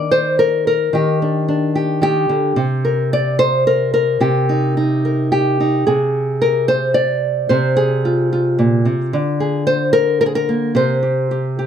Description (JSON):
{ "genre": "folk, solo fingerstyle acoustic guitar", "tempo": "110 BPM", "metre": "3/4", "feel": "straight", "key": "C minor", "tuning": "A4 = 440 Hz", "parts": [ { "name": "nylon-string guitar", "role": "solo", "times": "0.0-11.7 s", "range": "Bb2 to D5", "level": "-14 LUFS", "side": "equal", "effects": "none" } ], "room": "little or no reverb", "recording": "close, detailed microphones", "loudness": "-14 LUFS", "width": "side -8 dB against mid", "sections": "0.0-11.7 A section", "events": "none", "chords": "0.0 Ebmaj7; 2.6 Cm7; 5.9 Fm/C; 9.1 Bb7/D; 10.8 C5" }